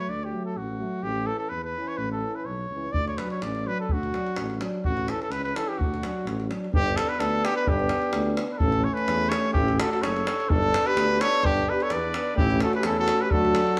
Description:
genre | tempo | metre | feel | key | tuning
balkan folk, Balkan brass band | 127 BPM | 2/4 | straight | unclear | A4 = 440 Hz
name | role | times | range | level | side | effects
warm trumpet | melody | 0.0-13.8 s | F#4 to D5 | -29 LUFS | equal | none
mellow euphonium | accompaniment | 0.0-13.8 s | E3 to B3 | -36 LUFS | equal | none
warm trombone | accompaniment | 0.0-13.8 s | A3 to D4 | -37 LUFS | equal | none
mellow tuba | bass | 0.1-13.6 s | F#1 to E2 | -32 LUFS | equal | none
davul | percussion | 2.9-13.8 s | none | -32 LUFS | equal | none
mellow flugelhorn | second line | 9.6-13.8 s | D4 to B4 | -32 LUFS | equal | none
room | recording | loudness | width
moderate stone room reverb, RT60 1.1 s | band playing live in one room | -26 LUFS | mono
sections
0.0-6.7 A section; 6.7-13.8 B section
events
none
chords
0.0 D; 1.0 A; 2.9 D; 4.8 A; 5.8 D; 6.7 G; 8.6 A; 10.5 G; 12.4 A

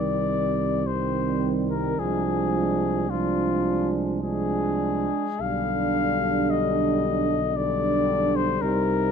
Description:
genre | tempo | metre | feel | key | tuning
classical, hymn-like piece for brass band | 49-58 BPM | 3/4 | rubato | unclear | A4 = 440 Hz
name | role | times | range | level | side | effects
warm cornet | melody | 0.0-9.1 s | F4 to F5 | -26 LUFS | left 8 dB | none
mellow French horn section | second line | 0.0-9.1 s | C4 to Eb4 | -28 LUFS | right 9 dB | none
clear trombone section | accompaniment | 0.0-9.1 s | G3 to Ab3 | -31 LUFS | left 3 dB | none
mellow euphonium | accompaniment | 0.0-9.1 s | C3 to F3 | -29 LUFS | right 4 dB | none
mellow tuba | bass | 0.0-9.1 s | B1 to C2 | -30 LUFS | right 1 dB | none
room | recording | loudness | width
moderate recital hall reverb, RT60 1.4 s | close, detailed microphones | -22 LUFS | side -7 dB against mid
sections
0.0-9.1 A section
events
none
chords
0.0 Cm; 2.0 Dm7b5/C; 5.4 G/B

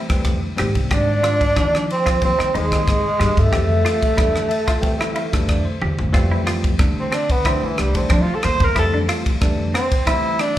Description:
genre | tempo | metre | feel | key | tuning
electric jazz fusion | 92 BPM | 4/4 | straight | F major | A4 = 440 Hz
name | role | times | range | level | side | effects
bell-like tine electric piano | accompaniment | 0.0-10.5 s | Eb3 to A5 | -26 LUFS | left 1 dB | medium stereo tremolo, slapback echo
semi-hollow electric guitar | stabs | 0.0-10.3 s | Eb3 to G4 | -28 LUFS | equal | analog chorus, slapback echo
upright bass | bass | 0.1-9.7 s | C2 to F3 | -21 LUFS | equal | none
crisp fusion drum kit | drums | 0.1-10.6 s | kick drum, ride cymbal, rim click, toms | -21 LUFS | equal | none
breathy tenor saxophone | melody | 0.9-10.6 s | E3 to C5 | -21 LUFS | right 1 dB | slapback echo, tape echo
trombone with cup mute | second line | 0.9-5.5 s | Ab3 to D4 | -26 LUFS | right 2 dB | none
room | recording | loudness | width
light reverb, studio reverb | live gig heard through the venue's PA, club ambience | -16 LUFS | side -13 dB against mid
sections
0.0-6.2 A section; 6.2-10.6 B section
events
tine electric piano fill 4.2-6.2; drum fill 5.8-6.2; tenor saxophone solo 6.2-10.6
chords
0.0 Fmaj9; 0.6 Abmaj9; 3.5 Fmaj9

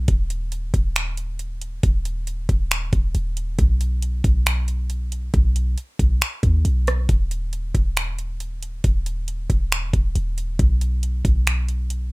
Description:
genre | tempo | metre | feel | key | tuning
hip hop, atmospheric cloud-rap | 137 BPM | 4/4 | half-time | unclear | A4 = 439 Hz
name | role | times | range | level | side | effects
clean 808-style bass | bass | 0.0-12.1 s | Eb1 to D#2 | -22 LUFS | equal | none
smooth R&B drum kit | drums | 0.1-12.0 s | finger snaps, hi-hat, kick drum, rim click | -21 LUFS | equal | none
room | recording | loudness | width
little or no reverb | rough home demo mix | -19 LUFS | side -24 dB against mid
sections
0.1-12.1 A section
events
none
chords
none

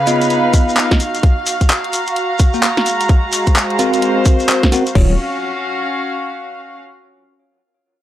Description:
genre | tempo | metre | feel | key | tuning
UK garage, two-step garage | 129 BPM | 4/4 | swing 62% on 16ths | Eb minor | A4 = 440 Hz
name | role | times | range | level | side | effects
airy breathy pad | sustained chords | 0.0-5.0 s | F5 | -24 LUFS | right 4 dB | chorus, sidechain pumping
rich chamber string section | texture | 0.0-6.8 s | Db3 to Bb5 | -19 LUFS | equal | sidechain pumping
bell-like tine electric piano | stabs | 0.1-5.1 s | Gb3 to Gb5 | -18 LUFS | equal | fast stereo tremolo, low-pass filter, tape echo
garage drum kit | drums | 0.1-5.1 s | crash cymbal, handclaps, hi-hat, snare drum | -18 LUFS | equal | overdrive
shekere | percussion | 0.1-4.9 s | none | -26 LUFS | left 3 dB | none
electronic kick drum | drums | 0.5-5.1 s | none | -12 LUFS | equal | overdrive
dark detuned saw bass | bass | 5.0-5.2 s | Eb1 | -16 LUFS | equal | tube saturation
room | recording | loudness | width
light reverb | dry, gritty hardware recording, transformer saturation | -13 LUFS | side -12 dB against mid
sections
0.0-5.0 A section; 5.0-6.8 B section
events
none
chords
0.0 Db9; 1.0 Gbmaj7; 2.9 Ab13; 5.0 Ebm9 (rootless)

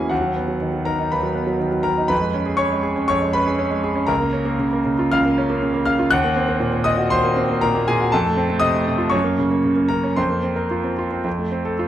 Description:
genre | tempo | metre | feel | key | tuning
classical, virtuoso piano study | 119 BPM | 4/4 | rubato | Bb minor from 4.1 s | A4 = 440 Hz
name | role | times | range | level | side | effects
clear concert grand piano | solo | 0.0-11.9 s | Db2 to Gb6 | -17 LUFS | equal | none
room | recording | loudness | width
moderate recital hall reverb, RT60 1.5 s | close, detailed microphones | -17 LUFS | side -11 dB against mid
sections
0.0-11.9 A section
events
none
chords
0.1 B/D#; 2.1 C#7/E#; 4.1 Bbm/Db; 6.1 Cm7b5/Eb; 8.1 F; 9.1 Gb; 10.2 Fsus4; 11.3 F

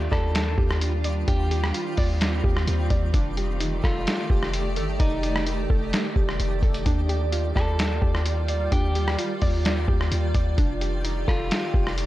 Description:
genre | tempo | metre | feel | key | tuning
hip hop, atmospheric cloud-rap | 129 BPM | 4/4 | half-time | Eb lydian | A4 = 440 Hz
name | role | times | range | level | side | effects
granular cloud pad | sustained chords | 0.0-12.1 s | Eb3 to D5 | -31 LUFS | right 2 dB | built-in reverb, sidechain pumping
soft round pluck | arpeggios | 0.0-12.1 s | D4 to D5 | -34 LUFS | right 1 dB | chorus, low-pass filter, tape echo
warm 808-style bass | bass | 0.0-12.1 s | F1 to Eb2 | -25 LUFS | equal | none
twinkling granular texture | texture | 0.0-12.1 s | Eb4 to G5 | -40 LUFS | equal | built-in reverb
electric guitar at the edge of break-up | melody | 0.1-11.9 s | Eb4 to A4 | -32 LUFS | equal | vibrato effect, low-pass filter, tape echo
lo-fi sampler-style drum kit | drums | 0.1-12.1 s | hi-hat, kick drum, rim click, snare drum | -24 LUFS | equal | none
room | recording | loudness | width
digital ambience | dry, gritty hardware recording | -21 LUFS | side -16 dB against mid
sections
0.0-12.1 A section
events
none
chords
0.0 Ebmaj9; 3.1 F13; 6.9 Ebmaj9; 10.6 F13

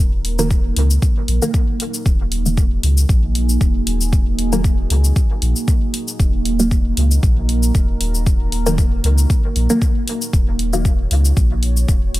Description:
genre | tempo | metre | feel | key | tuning
dub techno | 116 BPM | 4/4 | swing 54% on 16ths | Eb minor | A4 = 441 Hz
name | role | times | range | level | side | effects
deep dark ambient pad | sustained chords | 0.0-12.2 s | Bb3 to Db5 | -25 LUFS | right 3 dB | chorus, built-in reverb, sidechain pumping
round analog bass | bass | 0.0-12.2 s | Eb1 to Db2 | -17 LUFS | equal | sidechain pumping
electronic hi-hat and cabasa | drums | 0.2-12.2 s | none | -25 LUFS | left 2 dB | none
filtered dub chord stab | stabs | 0.4-10.9 s | Eb3 to Bb3 | -22 LUFS | equal | chorus, phaser, sidechain pumping, dub echo
electronic kick drum | drums | 0.5-12.0 s | none | -16 LUFS | equal | none
room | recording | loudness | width
little or no reverb | echo-heavy mix | -14 LUFS | side -17 dB against mid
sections
0.0-12.2 A section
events
none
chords
0.0 Ebm

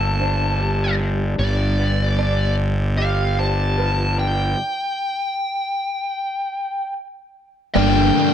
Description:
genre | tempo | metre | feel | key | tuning
post-rock | 75 BPM | 4/4 | straight | unclear | A4 = 440 Hz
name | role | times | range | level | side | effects
bluesy overdriven lead guitar | melody | 0.0-8.3 s | D5 to A5 | -23 LUFS | left 1 dB | distortion, slapback echo
electric guitar through a small old amp | arpeggios | 0.0-8.3 s | G2 to A4 | -28 LUFS | left 1 dB | harmonic tremolo, slapback echo
fuzz fingered electric bass | bass | 0.0-8.1 s | G1 | -20 LUFS | equal | overdrive
felt-muted upright piano | arpeggios | 0.2-8.3 s | B4 to D5 | -30 LUFS | right 9 dB | slapback echo
crunchy overdriven guitar | riff | 7.8-8.3 s | G2 to D4 | -18 LUFS | left 12 dB | none
overdriven semi-hollow guitar | riff | 7.8-8.3 s | G2 to D4 | -19 LUFS | right 11 dB | none
room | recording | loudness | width
little or no reverb | dark, warm production | -18 LUFS | side -9 dB against mid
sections
0.0-7.8 A section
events
stop 4.6-7.8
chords
0.0 Gmadd9; 1.4 G7; 7.8 Gm

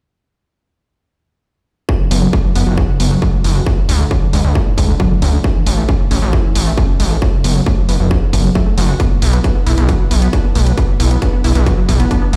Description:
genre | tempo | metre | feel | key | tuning
uplifting trance | 135 BPM | 4/4 | straight | F# minor | A4 = 438 Hz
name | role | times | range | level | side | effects
analog pluck | arpeggios | 1.9-12.4 s | A2 to B4 | -22 LUFS | equal | chorus, sidechain pumping, delay
electronic kick drum | drums | 1.9-12.2 s | none | -17 LUFS | equal | distortion
gritty driven synth bass | bass | 2.1-12.4 s | F#1 to D2 | -16 LUFS | equal | sidechain pumping
electronic hi-hat | drums | 2.1-12.4 s | none | -28 LUFS | equal | sidechain pumping on hats
room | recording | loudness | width
little or no reverb | played on a big sound system in a bare room, stone room reverb | -14 LUFS | mono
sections
1.9-12.4 A section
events
filter sweep on synth pluck 1.9-12.4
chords
none

